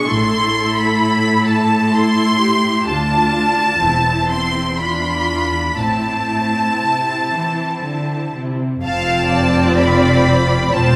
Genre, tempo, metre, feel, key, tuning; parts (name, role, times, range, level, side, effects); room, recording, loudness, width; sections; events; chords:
classical, slow romantic movement for string orchestra; 58-65 BPM; 3/4; rubato; A minor; A4 = 440 Hz
rich studio violin section; melody; 0.0-11.0 s; A5 to C6; -23 LUFS; equal
rich studio violin section; second line; 0.0-11.0 s; C5 to C6; -22 LUFS; equal
rich studio viola section; accompaniment; 0.0-11.0 s; C4 to A4; -24 LUFS; equal
rich studio cello section; bass; 0.0-11.0 s; D2 to E3; -22 LUFS; equal
rich studio double bass section; bass; 0.1-11.0 s; E1 to D2; -23 LUFS; equal
wet scoring stage reverb, RT60 2.0 s; -16 LUFS; mono
0.0-8.8 A section; 8.8-11.0 B section
0.1 Am; 2.9 Dm; 3.8 Am/E; 4.8 E5; 5.8 Am; 8.8 F